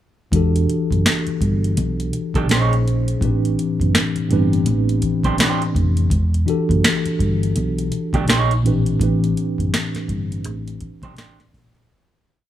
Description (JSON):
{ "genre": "R&B, neo-soul", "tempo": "83 BPM", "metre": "4/4", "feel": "swing 59% on 16ths", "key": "unclear", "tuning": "A4 = 442 Hz", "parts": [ { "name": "mellow tine electric piano", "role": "accompaniment", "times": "0.3-11.9 s", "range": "A2 to B#4", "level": "-20 LUFS", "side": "equal", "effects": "slow stereo tremolo" }, { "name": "hollow-body short-scale fingered electric bass", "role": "bass", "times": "0.3-11.9 s", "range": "E1 to B1", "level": "-20 LUFS", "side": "equal", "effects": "none" }, { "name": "booming analog drum machine", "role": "drums", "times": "0.3-11.9 s", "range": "hi-hat, kick drum, snare drum", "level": "-21 LUFS", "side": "equal", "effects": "none" }, { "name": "electric guitar through a small old amp", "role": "second line", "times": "2.4-11.4 s", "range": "A3 to C#5", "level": "-23 LUFS", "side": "right 6 dB", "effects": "none" } ], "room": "digital ambience", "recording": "none", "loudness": "-16 LUFS", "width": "side -12 dB against mid", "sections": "0.3-11.9 groove", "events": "fade-out 9.0-11.9", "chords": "0.3 Em11; 2.5 A#m11; 3.2 Am11; 6.1 Em11; 8.3 A#m11; 9.0 Am11", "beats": "| 0.32 1.04 1.77 2.49 | 3.21 3.94 4.66 5.38 | 6.11 6.83 7.55 8.27 | 9.00 9.72 10.44 11.16" }